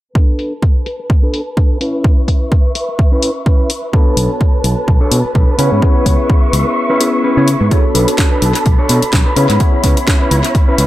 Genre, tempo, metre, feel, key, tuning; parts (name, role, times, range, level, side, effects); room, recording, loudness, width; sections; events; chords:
filtered disco house; 127 BPM; 4/4; swing 56% on 16ths; B dorian; A4 = 440 Hz
mellow electric guitar; riff; 0.1-10.9 s; C#4 to C#5; -20 LUFS; equal; sidechain pumping, low-pass filter, tape echo
dark symphonic violin section; sustained chords; 0.2-10.9 s; D4 to C#6; -21 LUFS; equal; sidechain pumping, low-pass filter
electronic kick drum; drums; 0.2-10.7 s; -11 LUFS; equal; overdrive
house drum kit; drums; 0.4-10.9 s; hi-hat, snare drum; -19 LUFS; left 1 dB; overdrive, sidechain pumping on hats, low-pass filter on hats, low-pass filter on snare, tape echo
tine electric piano; accompaniment; 3.9-10.9 s; B3 to E5; -19 LUFS; left 1 dB; phaser, sidechain pumping, low-pass filter, tape echo
fingered electric bass; bass; 4.2-10.9 s; B1 to C#3; -14 LUFS; equal; sidechain pumping, low-pass filter
light reverb, digital ambience; echo-heavy mix; -11 LUFS; side -15 dB against mid
0.2-7.7 A section; 7.7-10.9 B section
filter sweep 0.2-7.7, 7.7-10.9; kick drops out 6.8-7.7
0.2 Bm7; 1.8 C#m7; 3.9 Bm7; 5.6 C#m7; 7.7 Bm7; 9.4 C#m7